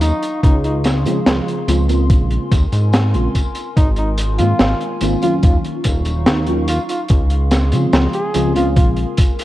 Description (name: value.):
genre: vaporwave.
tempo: 72 BPM.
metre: 4/4.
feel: straight.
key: unclear.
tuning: A4 = 440 Hz.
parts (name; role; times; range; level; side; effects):
mellow flugelhorn; melody; 0.0-8.9 s; Eb4 to Ab4; -24 LUFS; equal; tape echo.
warbly tape-like pad; sustained chords; 0.0-9.4 s; Gb3 to Db6; -28 LUFS; equal; chorus, built-in reverb.
chorused synth bass; bass; 0.0-9.1 s; Eb1 to Db3; -17 LUFS; equal; none.
crunchy breakbeat drum kit; drums; 0.0-9.4 s; hi-hat, snare drum, tambourine; -20 LUFS; equal; none.
electronic kick drum; drums; 0.4-9.3 s; none; -14 LUFS; equal; none.
FM electric piano with soft pad layer; accompaniment; 1.0-9.1 s; Db3 to F4; -21 LUFS; equal; tremolo, ensemble chorus, tape echo.
room: light reverb, small room ambience.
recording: dark, warm production, cassette tape.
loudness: -14 LUFS.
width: side -15 dB against mid.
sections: 0.0-9.4 A section.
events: none.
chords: 0.4 Dbmaj7; 2.1 Bbm9; 3.8 Ab69; 5.4 Ebm9; 7.1 Dbmaj7; 8.8 Bbm9.